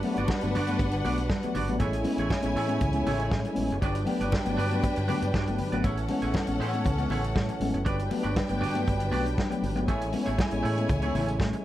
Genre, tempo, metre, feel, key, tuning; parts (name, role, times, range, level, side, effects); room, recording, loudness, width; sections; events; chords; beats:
disco; 119 BPM; 4/4; straight; A major; A4 = 441 Hz
rich studio string section; second line; 0.0-11.6 s; C#4 to G#5; -32 LUFS; left 1 dB
mellow tine electric piano; accompaniment; 0.0-11.2 s; G2 to C#4; -32 LUFS; left 2 dB
percussive tonewheel organ; sustained chords; 0.0-11.6 s; E3 to B4; -35 LUFS; right 1 dB; chorus vibrato, slow rotary speaker
warm soul drum kit; drums; 0.0-11.6 s; hi-hat, kick drum, snare drum; -31 LUFS; equal
congas; percussion; 0.0-11.6 s; -37 LUFS; left 3 dB
clean electric guitar; accompaniment; 0.1-11.6 s; A3 to D5; -36 LUFS; right 4 dB
overdriven fingered electric bass; bass; 0.2-11.5 s; F#1 to A2; -31 LUFS; equal
light reverb, small room ambience; dark, warm production; -25 LUFS; side -14 dB against mid
0.0-11.6 A section
0.0 Gmaj7; 1.8 Amaj7; 3.8 Gmaj7; 5.8 Amaj7; 7.9 Gmaj7; 9.9 Amaj7
0.28 0.79 1.29 | 1.80 2.30 2.81 3.31 | 3.82 4.33 4.83 5.34 | 5.84 6.35 6.85 7.36 | 7.86 8.37 8.87 9.38 | 9.88 10.38 10.89 11.39